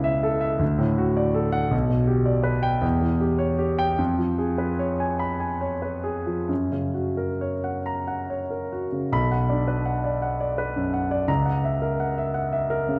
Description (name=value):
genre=classical, romantic character piece for solo piano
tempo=44-57 BPM (dotted quarters)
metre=6/8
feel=rubato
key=B minor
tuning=A4 = 440 Hz
part: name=warm concert grand piano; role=solo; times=0.0-13.0 s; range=B1 to B5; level=-24 LUFS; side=equal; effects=none
room=wet concert hall reverb, RT60 2.0 s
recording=none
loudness=-25 LUFS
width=mono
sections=0.0-9.1 A section; 9.1-13.0 B section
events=none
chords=0.0 A/C#; 0.6 D; 1.7 G/B; 2.8 C#dim/E; 4.0 C#7/E#; 6.5 F#; 9.1 Bm; 11.3 F#7/C#